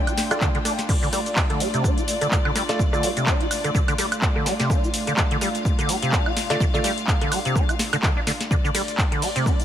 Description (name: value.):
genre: acid house.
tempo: 126 BPM.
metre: 4/4.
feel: swing 57% on 16ths.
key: D minor.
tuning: A4 = 440 Hz.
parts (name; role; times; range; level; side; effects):
dark chamber string section; sustained chords; 0.0-9.6 s; A3 to G5; -28 LUFS; left 1 dB; sidechain pumping.
liquid acid bass; riff; 0.0-9.6 s; C3 to F4; -26 LUFS; equal; tube saturation, wide subtle chorus, sidechain pumping, ping-pong delay.
booming analog drum machine; drums; 0.1-9.6 s; crash cymbal, handclaps, hi-hat, ride cymbal, rim click, shaker, snare drum, woodblock; -26 LUFS; equal; none.
warm concert grand piano; stabs; 0.3-3.1, 6.5-6.9 s; A3 to D5; -28 LUFS; right 1 dB; ping-pong delay.
electronic kick drum; drums; 0.4-9.6 s; none; -23 LUFS; equal; none.
room: light reverb.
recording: none.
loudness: -19 LUFS.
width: side -10 dB against mid.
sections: 0.0-9.6 A section.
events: none.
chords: 0.0 Dm.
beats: 0.41 | 0.89 1.36 1.84 2.32 | 2.79 3.27 3.75 4.22 | 4.70 5.17 5.65 6.13 | 6.60 7.08 7.56 8.03 | 8.51 8.98 9.46.